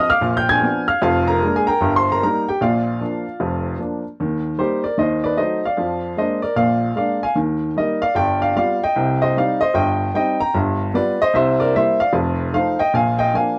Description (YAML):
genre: jazz, stride piano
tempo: 151 BPM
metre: 4/4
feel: swing 64% on 8ths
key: Eb major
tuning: A4 = 440 Hz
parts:
  - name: clear upright piano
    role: solo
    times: 0.0-13.6 s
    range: F1 to Ab6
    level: -19 LUFS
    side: equal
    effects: none
room: light reverb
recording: dry, close 1970s-style studio recording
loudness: -19 LUFS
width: mono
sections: 0.0-4.2 A section; 4.2-13.6 B section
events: none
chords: 0.2 Bb7b9; 1.0 Bb7/F; 1.8 Eb/G; 2.6 Bb; 4.2 Eb; 5.0 Ebdim7; 5.8 Bb7/F; 7.4 Eb; 8.2 G7; 8.9 Cm; 10.5 G7; 11.3 C7; 12.1 F7; 12.9 Bb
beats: 0.24 0.63 | 1.03 1.42 1.82 2.21 | 2.61 3.00 3.40 3.79 | 4.19 4.59 4.98 5.38 | 5.78 6.17 6.57 6.96 | 7.36 7.76 8.16 8.55 | 8.95 9.35 9.74 10.14 | 10.54 10.94 11.33 11.73 | 12.13 12.52 12.92 13.32